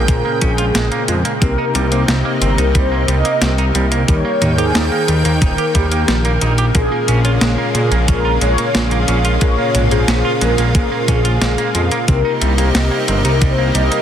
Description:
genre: synthwave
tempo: 90 BPM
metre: 4/4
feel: straight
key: Bb dorian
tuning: A4 = 444 Hz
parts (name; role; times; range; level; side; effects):
- mellow synth brass; melody; 0.0-14.0 s; G4 to Eb5; -21 LUFS; equal; chorus, ping-pong delay, shimmer reverb
- lush unison pad; sustained chords; 0.0-14.0 s; C3 to G5; -21 LUFS; right 1 dB; chorus, shimmer reverb
- semi-hollow electric guitar; arpeggios; 0.0-14.0 s; G3 to G4; -24 LUFS; right 4 dB; ping-pong delay, shimmer reverb
- tine electric piano; stabs; 0.0-14.0 s; Bb2 to G5; -23 LUFS; left 3 dB; medium tremolo, ping-pong delay, shimmer reverb
- fat analog bass; bass; 0.0-13.9 s; Eb1 to Bb2; -16 LUFS; equal; none
- clean 12-bit digital drum machine; drums; 0.1-14.0 s; hi-hat, snare drum, toms; -20 LUFS; equal; overdrive, studio reverb
- electronic kick drum; drums; 0.1-13.6 s; none; -16 LUFS; equal; overdrive, studio reverb
room: light reverb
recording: dense, heavily limited modern master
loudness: -13 LUFS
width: side -9 dB against mid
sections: 0.0-14.0 A section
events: none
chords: 0.0 Bbm7; 1.4 Cm7; 4.1 Eb; 6.8 Bbm7; 12.1 Cm7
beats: 0.08 0.75 | 1.42 2.08 2.75 3.42 | 4.08 4.75 5.42 6.08 | 6.75 7.42 8.08 8.75 | 9.42 10.08 10.75 11.42 | 12.08 12.75 13.42

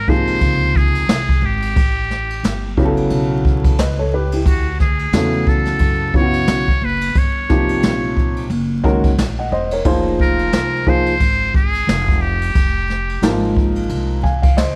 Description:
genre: hip hop, jazz-hop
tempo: 89 BPM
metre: 4/4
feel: swing 58% on 16ths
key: unclear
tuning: A4 = 440 Hz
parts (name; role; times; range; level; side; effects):
- trumpet with metal mute; melody; 0.0-13.6 s; F#4 to C#5; -23 LUFS; equal; none
- upright bass; bass; 0.0-14.8 s; Fb1 to F#2; -25 LUFS; equal; none
- warm upright piano; accompaniment; 0.1-14.8 s; C3 to Ab5; -21 LUFS; equal; none
- jazz brush drum kit; drums; 0.1-14.8 s; hi-hat, kick drum, ride cymbal, snare drum; -20 LUFS; equal; none
room: small room ambience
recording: vinyl crackle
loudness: -17 LUFS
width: mono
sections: 0.0-14.8 A section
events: none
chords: 0.0 Bbm9; 1.8 A13; 4.5 Dmaj7; 7.2 Gm7b5; 8.5 Gb9; 9.9 Fm9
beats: 0.41 1.09 | 1.76 2.44 3.11 3.79 | 4.46 5.13 5.81 6.48 | 7.16 7.83 8.50 9.18 | 9.85 10.53 11.20 11.88 | 12.55 13.22 13.90 14.57

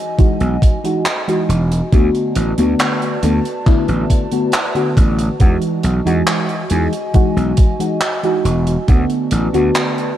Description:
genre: vaporwave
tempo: 69 BPM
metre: 4/4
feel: straight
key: E major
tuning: A4 = 442 Hz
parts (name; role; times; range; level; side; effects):
- warbly tape-like pad; sustained chords; 0.0-10.2 s; F#4 to A5; -25 LUFS; right 1 dB; chorus, built-in reverb
- mellow FM electric piano; accompaniment; 0.2-10.1 s; D3 to A4; -18 LUFS; equal; phaser, analog chorus, analog delay
- gritty slap bass; bass; 0.2-9.7 s; E1 to E2; -17 LUFS; equal; overdrive
- electronic kick drum; drums; 0.2-9.1 s; none; -12 LUFS; equal; none
- modern studio drum kit; drums; 0.2-10.1 s; handclaps, hi-hat; -22 LUFS; right 1 dB; gated reverb
room: light reverb, small room ambience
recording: none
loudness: -13 LUFS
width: side -12 dB against mid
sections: 0.0-10.2 A section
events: none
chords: 0.0 Emaj9; 1.9 D6; 5.4 Emaj9; 8.9 D6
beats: 0.19 1.06 | 1.93 2.79 3.66 4.53 | 5.40 6.27 7.14 8.01 | 8.88 9.75

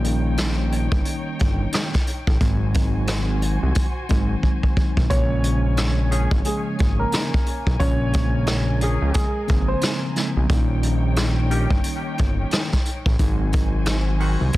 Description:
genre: hip hop, boom-bap hip-hop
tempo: 89 BPM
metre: 4/4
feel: swing 60% on 16ths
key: Bb minor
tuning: A4 = 440 Hz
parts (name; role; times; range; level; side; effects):
- mellow tine electric piano; accompaniment; 0.0-14.6 s; Db3 to Eb4; -27 LUFS; equal; medium stereo tremolo, high-pass filter, low-pass filter
- muted studio string section; sustained chords; 0.0-14.6 s; Db3 to Ab5; -34 LUFS; left 2 dB; high-pass filter, low-pass filter
- fat analog bass; bass; 0.0-14.5 s; G1 to Db2; -22 LUFS; equal; none
- vintage brush drum kit; drums; 0.0-14.6 s; hi-hat, kick drum, rim click, snare drum; -22 LUFS; equal; none
- warm upright piano; melody; 5.1-10.5 s; Ab3 to Db5; -28 LUFS; right 1 dB; high-pass filter, low-pass filter, tape echo
- mellow saxophone section; stabs; 6.1-14.4 s; Eb3 to Ab4; -32 LUFS; left 2 dB; high-pass filter, low-pass filter, tape echo
room: small room reverb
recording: dense, heavily limited modern master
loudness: -18 LUFS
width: side -17 dB against mid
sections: 0.0-14.6 A section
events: drum fill 4.4-5.1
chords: 0.0 Eb7; 2.4 Ab7; 5.1 Bbm9; 10.5 Eb7; 13.2 Ab7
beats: 0.39 1.06 1.73 | 2.41 3.08 3.76 4.43 | 5.11 5.78 6.45 7.13 | 7.80 8.48 9.15 9.82 | 10.50 11.17 11.85 12.52 | 13.20 13.87 14.54

